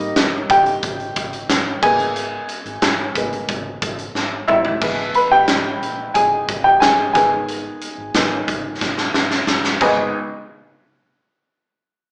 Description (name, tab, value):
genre	piano-driven pop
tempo	90 BPM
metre	4/4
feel	straight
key	G# harmonic minor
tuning	A4 = 439 Hz
part	warm upright piano	accompaniment	0.0-10.2 s	G#1 to B5	-20 LUFS	equal	none
part	vintage muted fingered electric bass	bass	0.0-10.1 s	G#1 to A#1	-39 LUFS	equal	none
part	huge arena drum kit	drums	0.0-10.0 s	crash cymbal, hi-hat, kick drum, snare drum, toms	-22 LUFS	equal	none
room	moderate large studio reverb, RT60 0.8 s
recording	band playing live in one room, small speaker sound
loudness	-18 LUFS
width	mono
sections	0.0-4.8 A section; 4.8-10.1 B section; 10.1-12.1 C section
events	upright piano solo 0.0-4.8, 4.8-10.1; drum fill 4.2-4.8, 8.8-10.1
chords	0.0 D#/G#; 1.8 G#madd9; 4.8 E/G#; 7.1 G#m; 10.1 N.C.